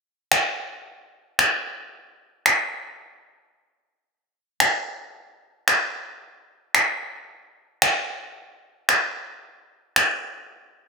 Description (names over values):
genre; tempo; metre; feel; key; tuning
pop; 112 BPM; 4/4; straight; none; none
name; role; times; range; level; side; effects
electronic finger snaps; drums; 0.3-10.1 s; none; -19 LUFS; equal; none
room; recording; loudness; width
wet plate reverb, RT60 1.7 s; none; -20 LUFS; side -4 dB against mid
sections
0.0-4.1 A section; 4.1-10.9 B section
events
break 3.0-4.1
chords
none